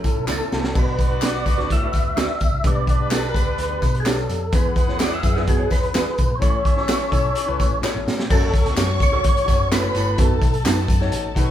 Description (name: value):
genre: uptempo 1960s-style soul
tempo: 127 BPM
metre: 4/4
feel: straight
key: unclear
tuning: A4 = 445 Hz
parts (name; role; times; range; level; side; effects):
- percussive tonewheel organ; melody; 0.0-10.6 s; G#4 to E5; -25 LUFS; equal; chorus vibrato, fast rotary speaker
- warm concert grand piano; accompaniment; 0.0-11.5 s; A2 to D5; -30 LUFS; left 5 dB; none
- hollow-body short-scale picked electric bass; bass; 0.0-11.5 s; F#1 to B2; -26 LUFS; equal; none
- raw garage drum kit; drums; 0.0-11.5 s; crash cymbal, hi-hat, kick drum, snare drum; -20 LUFS; equal; none
- tambourine and handclaps; percussion; 0.0-11.5 s; none; -33 LUFS; left 1 dB; none
- electric guitar through a small old amp; stabs; 0.3-10.8 s; B3 to C#5; -29 LUFS; right 4 dB; none
- warm baritone saxophone; riff; 0.5-10.4 s; E2 to B2; -29 LUFS; right 4 dB; none
- clear horn section; second line; 0.8-8.0 s; G3 to F#5; -31 LUFS; equal; none
- dark studio violin section; second line; 8.3-11.5 s; A4 to C#6; -29 LUFS; left 2 dB; none
room: light reverb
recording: band playing live in one room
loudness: -17 LUFS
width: side -11 dB against mid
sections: 0.8-8.3 A section; 8.3-11.5 B section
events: drum fill 0.3-0.8, 7.8-8.3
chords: 0.0 A; 0.8 Bm; 2.6 G/B; 4.5 E; 6.4 A; 8.3 F#m; 10.2 B7/F#